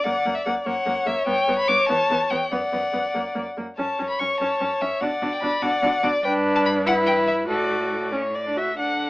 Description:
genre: quick classical-period movement for string quartet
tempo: 96 BPM (dotted quarters)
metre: 6/8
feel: straight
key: unclear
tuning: A4 = 439 Hz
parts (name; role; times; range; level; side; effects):
- warm violin; melody; 0.0-9.1 s; A4 to D6; -24 LUFS; left 2 dB; none
- dark violin; second line; 0.0-9.1 s; A4 to F#5; -24 LUFS; left 1 dB; none
- warm viola; accompaniment; 0.1-9.1 s; A#3 to F#4; -26 LUFS; right 1 dB; none
- clear cello; bass; 0.1-9.1 s; E2 to D3; -33 LUFS; right 1 dB; none
room: light reverb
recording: AM radio sound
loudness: -20 LUFS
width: side -19 dB against mid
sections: 0.0-8.8 A section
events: none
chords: 0.1 F#; 1.3 G; 1.9 E5; 2.5 Bm/F#; 3.1 F#; 3.8 F#m; 5.0 Bm; 6.2 G; 6.9 Em/G; 7.5 D/A; 8.1 A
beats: | 0.05 0.66 | 1.27 1.89 | 2.52 3.15 | 3.78 4.41 | 5.02 5.63 | 6.24 6.86 | 7.49 8.13 | 8.78

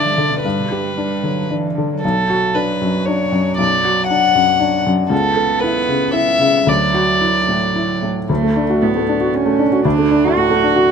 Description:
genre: neoclassical piano and strings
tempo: 115 BPM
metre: 3/4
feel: rubato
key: D major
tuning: A4 = 442 Hz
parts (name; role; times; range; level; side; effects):
- warm violin; melody; 0.0-8.0 s; A4 to F#5; -17 LUFS; left 2 dB; none
- warm cello; second line; 0.0-10.9 s; G2 to F#4; -20 LUFS; right 8 dB; none
- felt-muted upright piano; accompaniment; 0.0-10.9 s; B1 to A4; -18 LUFS; left 3 dB; none
room: light reverb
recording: minimal, uncompressed stereo recording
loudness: -14 LUFS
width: side -6 dB against mid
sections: 0.0-8.3 A section; 8.3-10.9 A section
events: none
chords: 0.0 G; 2.0 Bm; 5.1 Aadd9/C#; 6.7 Dadd9; 8.3 D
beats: | 0.44 0.97 1.50 | 2.03 2.55 3.07 | 3.58 4.09 4.60 | 5.11 5.63 6.15 | 6.68 7.22 7.76 | 8.29 8.82 9.34 | 9.85 10.36 10.87

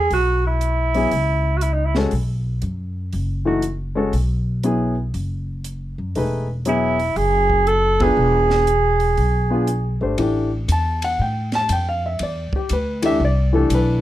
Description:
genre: modal jazz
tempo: 119 BPM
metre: 4/4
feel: swing 66% on 8ths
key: A minor from 10.2 s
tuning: A4 = 435 Hz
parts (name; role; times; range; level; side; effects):
- breathy alto saxophone; melody; 0.0-2.0, 6.7-10.0 s; D#4 to A4; -19 LUFS; right 2 dB; plate reverb
- upright bass; bass; 0.0-14.0 s; E1 to A2; -21 LUFS; equal; none
- compact cocktail drum kit; drums; 0.1-13.9 s; hi-hat, kick drum, ride cymbal, snare drum; -31 LUFS; right 1 dB; none
- warm concert grand piano; accompaniment; 0.9-14.0 s; E3 to A5; -21 LUFS; left 2 dB; none
room: moderate studio reverb, RT60 0.5 s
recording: none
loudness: -17 LUFS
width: side -14 dB against mid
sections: 0.0-10.2 A section; 10.2-14.0 B section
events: band accent 7.9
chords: 0.0 F#9sus4; 2.1 Bsus4; 8.2 E7b9; 10.2 Am11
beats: | 0.11 0.61 1.12 1.62 | 2.12 2.63 3.13 3.63 | 4.14 4.64 5.14 5.65 | 6.15 6.66 7.16 7.66 | 8.17 8.67 9.18 9.68 | 10.18 10.69 11.19 11.69 | 12.20 12.70 13.21 13.71

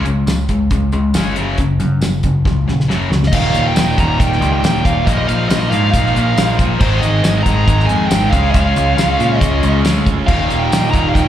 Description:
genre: classic rock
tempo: 138 BPM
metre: 4/4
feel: straight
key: Eb mixolydian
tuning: A4 = 440 Hz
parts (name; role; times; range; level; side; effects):
- cranked stack guitar; riff; 0.0-11.3 s; Eb2 to Ab4; -22 LUFS; right 8 dB; overdrive
- distorted electric guitar; riff; 0.0-11.3 s; Eb2 to Db4; -20 LUFS; left 8 dB; overdrive, slapback echo
- growling picked electric bass; bass; 0.0-11.3 s; Eb1 to Bb2; -17 LUFS; equal; overdrive
- damped 70s drum kit; drums; 0.1-11.3 s; crash cymbal, hi-hat, kick drum, snare drum, tambourine; -17 LUFS; equal; none
- bluesy overdriven lead guitar; melody; 3.3-11.3 s; C5 to Bb5; -19 LUFS; right 2 dB; distortion, slapback echo
- string machine, full ensemble; sustained chords; 3.3-11.3 s; Bb3 to F5; -27 LUFS; right 1 dB; ensemble chorus
- thick fuzz guitar; riff; 3.3-11.3 s; Eb2 to Db4; -24 LUFS; right 2 dB; none
room: light reverb, small room ambience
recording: live gig heard through the venue's PA, club reverb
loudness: -12 LUFS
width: side -11 dB against mid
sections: 0.0-3.3 A section; 3.3-11.3 B section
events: drum fill 2.5-3.3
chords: 0.0 Db5; 1.4 Gb5; 3.3 Eb; 5.1 Bbsus4; 6.8 Ab; 8.3 Db; 10.3 Eb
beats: 0.27 0.71 1.15 | 1.58 2.02 2.45 2.89 | 3.33 3.76 4.20 4.63 | 5.07 5.50 5.93 6.37 | 6.80 7.24 7.67 8.11 | 8.54 8.98 9.41 9.85 | 10.28 10.71 11.15

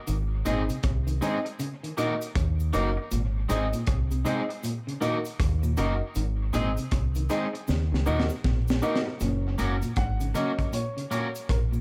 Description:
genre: roots reggae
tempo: 79 BPM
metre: 4/4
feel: swing 63% on 16ths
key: F# major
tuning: A4 = 440 Hz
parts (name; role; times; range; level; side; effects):
- electric guitar at the edge of break-up; arpeggios; 0.1-11.8 s; G#2 to D#3; -36 LUFS; equal; tremolo
- deep dub fingered electric bass; bass; 0.1-11.8 s; F#1 to D#2; -29 LUFS; equal; none
- crunchy breakbeat drum kit; drums; 0.1-11.7 s; hi-hat, kick drum, rim click, snare drum; -33 LUFS; equal; dub echo
- cabasa; percussion; 0.1-11.8 s; none; -50 LUFS; equal; none
- electric guitar at the edge of break-up; accompaniment; 0.5-11.3 s; G#3 to A#4; -35 LUFS; equal; lush chorus, tape echo
- dark upright piano; stabs; 0.5-11.6 s; F#3 to F#5; -34 LUFS; equal; none
room: moderate studio reverb, RT60 0.6 s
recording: none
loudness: -27 LUFS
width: mono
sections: 0.0-9.2 A section; 9.2-11.8 B section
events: drum fill 7.7-9.2; upright piano solo 9.2-11.8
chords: 0.1 G#; 1.6 D#m; 3.1 G#; 4.6 D#m; 6.2 G#; 7.7 D#m; 9.2 F#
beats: | 0.08 0.84 1.60 2.36 | 3.12 3.88 4.64 5.40 | 6.16 6.92 7.68 8.44 | 9.21 9.97 10.73 11.49

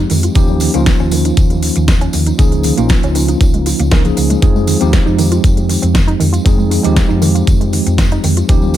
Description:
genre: nu-disco, nu disco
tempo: 118 BPM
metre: 4/4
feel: straight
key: F minor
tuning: A4 = 441 Hz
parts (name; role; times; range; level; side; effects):
- mellow tine electric piano; accompaniment; 0.0-8.8 s; F3 to Bb4; -16 LUFS; equal; medium stereo tremolo, sidechain pumping, dub echo
- analog pluck; arpeggios; 0.0-8.8 s; Eb3 to F4; -21 LUFS; right 4 dB; chorus, sidechain pumping, dub echo
- hollow-body short-scale fingered electric bass; bass; 0.0-8.8 s; Bb1 to F2; -16 LUFS; equal; sidechain pumping
- pop drum kit; drums; 0.1-8.8 s; hi-hat, snare drum; -20 LUFS; equal; none
- tambourine; percussion; 0.1-8.8 s; none; -29 LUFS; right 1 dB; none
- electronic kick drum; drums; 0.4-8.6 s; none; -12 LUFS; equal; none
room: digital ambience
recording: none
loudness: -10 LUFS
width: side -12 dB against mid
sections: 0.0-8.8 A section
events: none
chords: 0.4 Eb9; 2.4 Db69; 4.4 Fm7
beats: | 0.36 0.86 1.37 1.88 | 2.39 2.90 3.41 3.92 | 4.42 4.93 5.44 5.95 | 6.46 6.97 7.47 7.98 | 8.49

